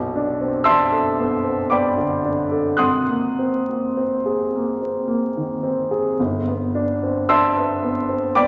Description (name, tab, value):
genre	classical, impressionist solo piano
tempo	51-61 BPM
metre	3/4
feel	rubato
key	unclear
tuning	A4 = 440 Hz
part	warm concert grand piano	solo	0.0-8.5 s	G1 to Gb6	-20 LUFS	equal	none
room	wet recital hall reverb, RT60 1.7 s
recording	vinyl crackle, nothing above 7.7 kHz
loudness	-21 LUFS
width	mono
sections	0.0-8.5 A section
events	none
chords	0.0 Bm7; 2.8 Ab9; 6.2 G6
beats	0.67 1.70 | 2.79 3.96 5.08 | 6.19 7.29 8.35